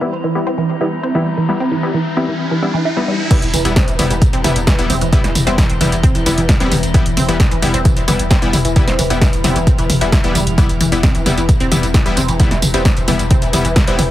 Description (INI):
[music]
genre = driving peak-time techno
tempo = 132 BPM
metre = 4/4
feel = straight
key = E minor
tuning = A4 = 440 Hz
[part]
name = resonant blip pluck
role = riff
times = 0.0-14.1 s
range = E3 to E4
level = -20 LUFS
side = right 1 dB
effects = phaser, overdrive, sidechain pumping, digital delay
[part]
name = supersaw stab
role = stabs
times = 0.0-14.0 s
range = G3 to E4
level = -20 LUFS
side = left 2 dB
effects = sidechain pumping, low-pass filter, digital delay
[part]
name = metallic inharmonic drone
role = drone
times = 0.0-14.1 s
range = E3 to E4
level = -25 LUFS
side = left 2 dB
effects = chorus, built-in reverb, phaser, sidechain pumping
[part]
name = riser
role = sound effects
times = 1.0-3.3 s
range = none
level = -26 LUFS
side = equal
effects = none
[part]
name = electronic kick drum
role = drums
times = 3.3-13.9 s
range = none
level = -13 LUFS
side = equal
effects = none
[part]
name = punchy analog drum machine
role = drums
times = 3.3-14.1 s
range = crash cymbal, hi-hat, snare drum, tambourine, toms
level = -18 LUFS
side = equal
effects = sidechain pumping on cymbals, sidechain pumping on hats, sidechain pumping on toms, sidechain pumping on perc
[part]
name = saturated sub bass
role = bass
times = 3.4-14.1 s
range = E1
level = -21 LUFS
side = equal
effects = sidechain pumping, low-pass filter
[sound]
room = light reverb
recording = heavily compressed radio sound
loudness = -12 LUFS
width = side -14 dB against mid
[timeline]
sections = 0.0-3.3 A section; 3.3-14.1 B section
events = riser 1.0-3.3; drop 3.3-14.1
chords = 0.0 Em